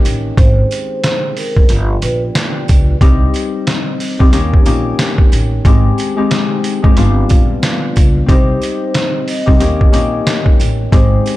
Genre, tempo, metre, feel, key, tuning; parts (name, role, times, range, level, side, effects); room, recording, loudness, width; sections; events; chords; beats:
hip hop, boom-bap hip-hop; 91 BPM; 4/4; swing 60% on 16ths; A4 = 440 Hz
percussive tonewheel organ; sustained chords; 0.0-11.4 s; Eb3 to G4; -26 LUFS; right 2 dB; slow rotary speaker
upright bass; bass; 0.0-11.2 s; G1 to Eb2; -16 LUFS; equal
sleigh bells; percussion; 0.0-11.4 s; -33 LUFS; right 8 dB
trip hop sampler-style drum kit; drums; 0.1-11.4 s; hi-hat, kick drum, snare drum; -12 LUFS; equal
vibraphone with soft mallets; melody; 0.4-2.2, 8.3-11.4 s; Bb4 to Eb5; -21 LUFS; equal; ping-pong delay
Celtic harp; accompaniment; 3.0-11.4 s; G3 to G4; -18 LUFS; left 4 dB
small room ambience; dark, warm production; -10 LUFS; side -16 dB against mid
0.0-11.4 A section
0.4 Abmaj7; 1.7 G7; 3.0 Cm; 4.3 Eb7; 5.7 Abmaj7; 7.0 G7; 8.3 Cm; 9.6 Eb7
| 0.38 1.04 1.70 2.35 | 3.01 3.67 4.33 4.99 | 5.65 6.31 6.97 7.63 | 8.29 8.95 9.61 10.27 | 10.93